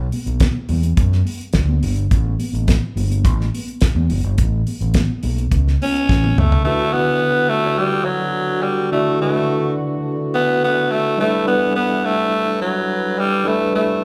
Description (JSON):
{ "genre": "disco", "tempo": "106 BPM", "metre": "4/4", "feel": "straight", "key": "unclear", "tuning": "A4 = 439 Hz", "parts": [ { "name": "overdriven fingered electric bass", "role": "bass", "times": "0.0-6.6 s", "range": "F#1 to F#2", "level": "-21 LUFS", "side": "equal", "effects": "none" }, { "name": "damped 70s drum kit", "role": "drums", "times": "0.1-6.6 s", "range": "hi-hat, kick drum, snare drum, toms", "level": "-21 LUFS", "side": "equal", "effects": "none" }, { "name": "congas", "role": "percussion", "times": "0.1-6.5 s", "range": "none", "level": "-30 LUFS", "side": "equal", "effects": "none" }, { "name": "raspy alto saxophone", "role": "melody", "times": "5.8-14.0 s", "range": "F#3 to C#4", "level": "-20 LUFS", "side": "equal", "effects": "none" }, { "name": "mellow tine electric piano", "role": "accompaniment", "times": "6.6-14.0 s", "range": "D3 to D5", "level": "-24 LUFS", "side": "equal", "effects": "none" }, { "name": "dark French horn section", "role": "sustained chords", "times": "6.7-14.0 s", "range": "D3 to B4", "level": "-28 LUFS", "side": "equal", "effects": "none" } ], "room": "moderate large studio reverb, RT60 1.2 s", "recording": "band playing live in one room", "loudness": "-18 LUFS", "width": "mono", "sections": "0.0-6.7 A section; 6.7-14.0 B section", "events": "drum fill 6.1-6.7", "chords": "0.0 Bm; 2.1 A7; 6.7 D6; 11.2 G6", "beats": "0.41 0.98 1.55 | 2.12 2.68 3.25 3.82 | 4.39 4.95 5.52 6.09 | 6.65 7.22 7.79 8.35 | 8.92 9.48 10.05 10.61 | 11.18 11.74 12.31 12.88 | 13.44 14.01" }